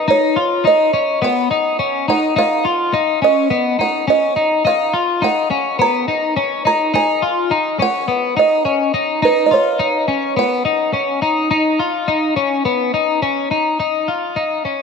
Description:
dream pop; 105 BPM; 4/4; straight; B lydian; A4 = 440 Hz
buzzing kalimba; melody; 0.0-13.2 s; B4 to A#5; -18 LUFS; right 4 dB; ping-pong delay
twelve-string electric guitar; arpeggios; 0.0-14.8 s; B3 to E#4; -16 LUFS; left 4 dB; wide subtle chorus, ping-pong delay
wet plate reverb, RT60 2.8 s; -14 LUFS; side -5 dB against mid
0.0-13.8 A section; 13.8-14.8 B section
0.0 Bsus2 (rootless)
| 0.08 0.65 1.22 1.79 | 2.36 2.94 3.51 4.08 | 4.65 5.22 5.79 6.36 | 6.94 7.51 8.08 8.65 | 9.22 9.79 10.36 10.94 | 11.51 12.08 12.65 13.22 | 13.79 14.36

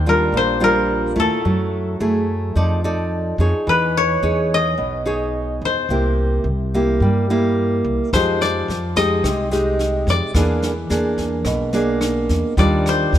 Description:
bossa nova; 108 BPM; 4/4; straight; A4 = 440 Hz
koto; melody; 0.0-13.2 s; A4 to Eb5; -20 LUFS; left 3 dB
nylon-string guitar; accompaniment; 0.0-13.2 s; Bb2 to D5; -20 LUFS; right 1 dB
upright bass; bass; 0.0-13.2 s; Bb1 to G2; -22 LUFS; equal
jazz brush drum kit; drums; 8.1-13.2 s; kick drum, rim click, snare drum; -26 LUFS; equal
light reverb; -16 LUFS; side -11 dB against mid
0.0-13.2 A section
0.0 Ebmaj9; 1.4 Gbm9; 2.6 F6; 3.7 E6; 5.9 C7; 8.1 Fm9; 10.3 E7#11; 12.6 Ebmaj9
0.33 0.89 | 1.45 2.00 2.56 3.11 | 3.67 4.23 4.78 5.34 | 5.90 6.45 7.01 7.57 | 8.12 8.68 9.24 9.79 | 10.35 10.91 11.46 12.02 | 12.57 13.13

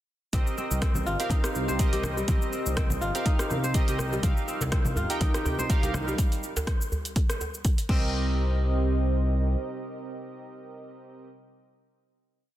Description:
afro house; 123 BPM; 4/4; swing 55% on 16ths; C minor pentatonic; A4 = 440 Hz
dark analog pad; sustained chords; 0.7-11.3 s; C4 to Eb5; -36 LUFS; right 1 dB; chorus, sidechain pumping
kora; arpeggios; 0.3-9.7 s; G3 to C5; -34 LUFS; left 1 dB; sidechain pumping, digital delay
warm analog keys; stabs; 0.3-11.3 s; C4 to G5; -34 LUFS; right 3 dB; chorus, sidechain pumping, digital delay
smooth synth bass; bass; 0.3-9.6 s; G1 to C2; -28 LUFS; equal; sidechain pumping
afro-pop drum kit; drums; 0.3-8.0 s; crash cymbal, hi-hat, rim click, shaker; -34 LUFS; equal; soft clipping on snare
electronic kick drum; drums; 0.3-8.0 s; -25 LUFS; equal; overdrive
congas; percussion; 0.3-6.0 s; -37 LUFS; left 1 dB
djembe; percussion; 4.6-7.8 s; -33 LUFS; right 1 dB
light reverb; dense, heavily limited modern master; -24 LUFS; side -14 dB against mid
0.3-8.1 drop; 8.1-12.0 final hit
drop 0.3-8.1
0.3 Cm7
| 0.33 0.82 1.31 1.79 | 2.28 2.77 3.26 3.75 | 4.23 4.72 5.21 5.70 | 6.18 6.67 7.16 7.65 | 8.14 8.62 9.11 9.60 | 10.09 10.57 11.06

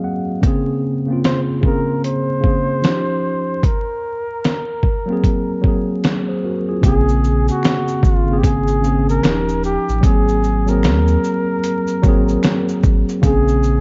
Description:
lo-fi hip hop; 75 BPM; 4/4; swing 61% on 16ths; Bb minor; A4 = 442 Hz
mellow tine electric piano; accompaniment; 0.0-13.8 s; Db3 to Gb5; -21 LUFS; equal; cassette tape, low-pass filter
dusty soul sampler-style drum kit; drums; 0.4-13.8 s; hi-hat, kick drum, shaker, snare drum; -19 LUFS; equal; overdrive
breathy flugelhorn; melody; 1.2-13.8 s; F4 to C5; -25 LUFS; equal; low-pass filter
sub bass with octave; bass; 6.8-13.8 s; Eb1 to Eb2; -20 LUFS; equal
finger snaps; percussion; 7.6-12.7 s; -42 LUFS; equal
light reverb, digital ambience; dark, warm production, vinyl crackle, nothing above 7.6 kHz; -17 LUFS; mono
0.0-6.8 A section; 6.8-13.8 B section
filter sweep 0.0-6.8
0.4 Bbm9; 2.8 Eb9; 3.6 Ab9; 6.8 Bbm9; 9.2 Eb9; 10.0 Ab9; 13.2 Bbm9
| 0.43 1.23 2.03 2.83 | 3.63 4.43 5.23 6.03 | 6.83 7.63 8.43 9.23 | 10.03 10.83 11.63 12.43 | 13.23

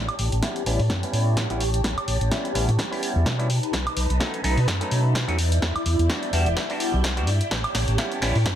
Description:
filtered disco house; 127 BPM; 4/4; swing 56% on 16ths; A mixolydian; A4 = 444 Hz
phased string machine; sustained chords; 0.0-8.6 s; D#4 to G6; -29 LUFS; equal; ensemble chorus, phaser, sidechain pumping, low-pass filter
overdriven fingered electric bass; bass; 0.0-8.6 s; E1 to B2; -22 LUFS; equal; sidechain pumping, low-pass filter
punchy analog drum machine; drums; 0.1-8.6 s; hi-hat, snare drum, woodblock; -28 LUFS; equal; sidechain pumping on perc, high-pass filter on perc, high-pass filter on snare, sidechain pumping on hats, high-pass filter on hats, high-pass filter on room
auto-wah clav; accompaniment; 0.4-8.4 s; F#3 to F#4; -30 LUFS; right 1 dB; phaser, vintage 12-bit sampler grit, sidechain pumping, low-pass filter
electronic kick drum; drums; 0.4-8.6 s; -31 LUFS; equal; high-pass filter on kick, high-pass filter on room
little or no reverb; -21 LUFS; side -10 dB against mid
0.0-8.6 A section
build-up 0.0-8.6; drum fill 0.0-8.6; filter sweep 0.0-8.6
0.0 A7; 3.5 B7; 5.4 Em7; 7.5 A7
0.43 0.90 1.37 | 1.85 2.32 2.79 3.26 | 3.74 4.21 4.68 5.15 | 5.62 6.10 6.57 7.04 | 7.51 7.99 8.46

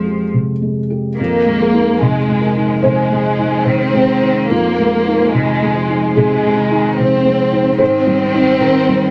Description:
neoclassical piano and strings; 73 BPM; 4/4; rubato; F minor; A4 = 443 Hz
clear cello; second line; 0.0-9.1 s; C3 to F3; -27 LUFS; equal
felt-muted upright piano; accompaniment; 0.0-9.1 s; F2 to C5; -17 LUFS; equal
dark studio violin section; melody; 1.2-9.1 s; Ab3 to C4; -18 LUFS; equal
wet small room reverb, RT60 0.5 s; -14 LUFS; mono
0.0-1.2 A section; 1.2-9.1 A section
0.0 Fmadd9; 1.2 Fm7; 7.8 Abmaj7
0.34 | 1.19 2.02 2.84 3.67 | 4.51 5.35 6.17 6.98 | 7.80 8.62

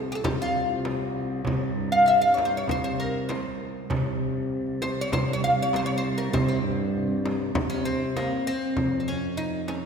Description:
Turkish makam ensemble; 98 BPM; 4/4; straight; C makam hicaz; A4 = 444 Hz
oud; melody; 0.0-9.9 s; Bb3 to F5; -25 LUFS; equal
mellow tuba; bass; 0.0-9.9 s; F2 to C3; -30 LUFS; left 1 dB
dark cello; drone; 0.0-8.8 s; C2; -35 LUFS; right 3 dB
darbuka; percussion; 0.2-9.8 s; -33 LUFS; right 2 dB
frame drum; percussion; 0.2-9.8 s; -34 LUFS; left 1 dB
wet scoring stage reverb, RT60 2.0 s; recorded in a church or concert hall; -23 LUFS; side -6 dB against mid
0.0-8.8 A section; 8.8-9.9 B section
0.25 0.86 | 1.47 2.08 2.69 3.29 | 3.90 4.51 5.12 5.73 | 6.34 6.95 7.56 8.17 | 8.78 9.39

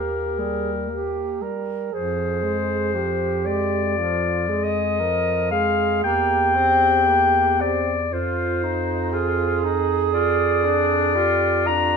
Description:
classical, lyrical piece for single-reed quartet; 58 BPM; 4/4; rubato; A4 = 442 Hz
clear clarinet; melody; 0.0-12.0 s; Bb4 to Bb5; -21 LUFS; left 4 dB
warm alto saxophone; second line; 0.0-12.0 s; F4 to Bb4; -25 LUFS; right 8 dB
mellow tenor saxophone; accompaniment; 0.0-12.0 s; F3 to F4; -27 LUFS; left 2 dB
mellow bass clarinet; bass; 0.0-12.0 s; Eb2 to F2; -28 LUFS; right 2 dB
wet stone room reverb, RT60 1.2 s; minimal, uncompressed stereo recording; -19 LUFS; side -6 dB against mid
0.0-12.0 A section
0.0 Eb; 1.9 Fm; 6.0 C7/E; 8.1 Fm7; 10.1 Ddim/F
0.89 | 1.93 2.95 3.97 5.00 | 6.04 7.08 8.11 9.13 | 10.13 11.15

